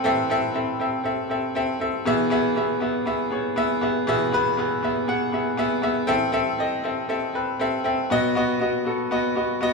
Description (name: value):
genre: pop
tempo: 119 BPM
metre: 4/4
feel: swing 56% on 16ths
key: E major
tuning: A4 = 438 Hz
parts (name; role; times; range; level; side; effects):
- bright grand piano; solo; 0.0-9.7 s; E2 to F#5; -21 LUFS; left 1 dB; none
room: moderate large studio reverb, RT60 0.9 s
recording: band playing live in one room, studio ambience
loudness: -21 LUFS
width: side -3 dB against mid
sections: 0.0-9.7 A section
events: none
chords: 0.0 Am; 2.1 E; 6.1 Am; 8.1 B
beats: | 0.04 0.55 1.05 1.55 | 2.06 2.56 3.06 3.57 | 4.07 4.58 5.08 5.58 | 6.09 6.59 7.10 7.60 | 8.11 8.61 9.11 9.62